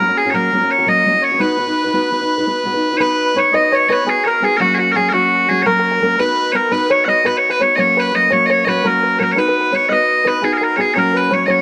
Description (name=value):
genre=celtic folk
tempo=113 BPM (dotted quarters)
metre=9/8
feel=straight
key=B major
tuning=A4 = 438 Hz
part: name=loud bright bagpipes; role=melody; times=0.0-11.6 s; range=F#4 to F#5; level=-17 LUFS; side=equal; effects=none
part: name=melodica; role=second line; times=0.0-11.6 s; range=F#4 to D#5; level=-24 LUFS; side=equal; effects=none
part: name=fingerpicked steel-string acoustic guitar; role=accompaniment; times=0.0-11.6 s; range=F#3 to B4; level=-23 LUFS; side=equal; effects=none
part: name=open-back banjo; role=second line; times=3.0-11.6 s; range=F#4 to D#5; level=-24 LUFS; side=equal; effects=none
room=moderate spring reverb, RT60 2.0 s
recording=none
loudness=-15 LUFS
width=mono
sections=0.0-3.0 A section; 3.0-11.6 B section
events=none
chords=0.0 F#; 1.4 B; 4.6 F#; 6.2 B; 7.8 F#; 9.4 B; 11.0 F#